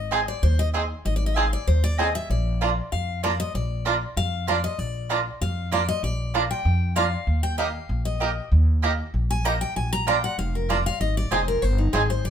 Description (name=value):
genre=bluegrass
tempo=193 BPM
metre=4/4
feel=straight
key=Bb mixolydian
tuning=A4 = 440 Hz
part: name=picked steel-string acoustic guitar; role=accompaniment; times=0.0-12.3 s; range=Eb4 to Bb5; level=-29 LUFS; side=left 4 dB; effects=none
part: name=upright bass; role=bass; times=0.0-12.3 s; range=F1 to F2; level=-24 LUFS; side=equal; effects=none
part: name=bluegrass banjo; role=melody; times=0.1-12.0 s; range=Bb3 to Ab4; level=-27 LUFS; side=right 4 dB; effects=none
part: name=mandolin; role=stabs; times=0.1-12.0 s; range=Bb3 to Bb5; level=-26 LUFS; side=right 5 dB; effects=none
room=light reverb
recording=minimal, uncompressed stereo recording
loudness=-21 LUFS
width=side -9 dB against mid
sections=0.0-7.3 A section; 7.3-12.3 A section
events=steel-string acoustic guitar solo 0.0-12.3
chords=0.0 Ab; 2.3 Bb; 7.3 Eb; 9.8 Bb; 11.0 Ab